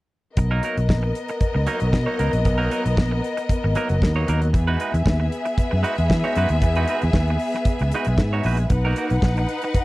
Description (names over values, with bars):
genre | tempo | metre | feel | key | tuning
disco | 115 BPM | 4/4 | straight | B major | A4 = 440 Hz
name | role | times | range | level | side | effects
clear studio string section | second line | 0.4-9.8 s | B3 to F#5 | -25 LUFS | left 2 dB | none
clean electric guitar | accompaniment | 0.4-9.7 s | F#3 to C#5 | -27 LUFS | right 4 dB | none
fingered electric bass | bass | 0.4-9.4 s | F#1 to E3 | -21 LUFS | equal | none
damped 70s drum kit | drums | 0.4-9.8 s | hi-hat, kick drum, snare drum | -22 LUFS | equal | none
room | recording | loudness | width
studio reverb | dry, close 1970s-style studio recording | -19 LUFS | side -19 dB against mid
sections
0.4-9.8 A section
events
none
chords
0.4 Bmaj7; 4.5 Emaj9; 8.7 Bmaj7